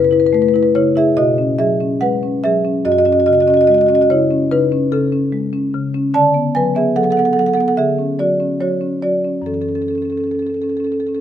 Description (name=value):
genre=classical, contemporary piece for solo marimba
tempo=66-74 BPM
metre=4/4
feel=rubato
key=F# minor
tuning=A4 = 437 Hz
part: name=marimba with soft mallets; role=solo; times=0.0-11.2 s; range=F#2 to A5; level=-13 LUFS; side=equal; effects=none
room=moderate recital hall reverb, RT60 1.3 s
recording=close, detailed microphones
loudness=-13 LUFS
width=side -10 dB against mid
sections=0.0-11.2 A section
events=none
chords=0.0 F#m11; 1.2 Bsus2; 2.8 F#sus2; 6.1 D6; 7.8 Dmaj7; 9.5 F#m7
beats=0.32 1.17 2.02 | 2.85 3.69 4.51 5.33 | 6.14 6.96 7.78 8.61 | 9.47 10.37